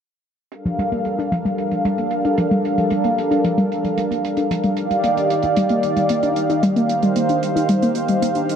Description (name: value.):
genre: synthwave.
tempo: 113 BPM.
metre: 4/4.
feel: straight.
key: G minor.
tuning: A4 = 440 Hz.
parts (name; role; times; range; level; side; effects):
lush unison pad; sustained chords; 0.5-8.6 s; Eb3 to F5; -19 LUFS; right 1 dB; chorus.
hi-hat; drums; 0.5-8.6 s; none; -36 LUFS; right 6 dB; low-pass filter on hats, low-pass filter on room.
warbly dusty pluck; arpeggios; 0.7-8.5 s; F3 to Eb4; -20 LUFS; left 1 dB; chorus, digital delay.
room: moderate concert hall reverb, RT60 2.3 s.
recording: none.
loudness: -17 LUFS.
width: side -8 dB against mid.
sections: 0.5-8.6 A section.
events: filter sweep on drum 0.5-8.6; filter sweep on analog synth pad 0.5-8.6.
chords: 0.5 Gm7; 4.8 Ebmaj7.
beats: | 0.52 1.05 1.58 2.12 | 2.65 3.18 3.71 4.24 | 4.77 5.30 5.83 6.36 | 6.89 7.43 7.96 8.49.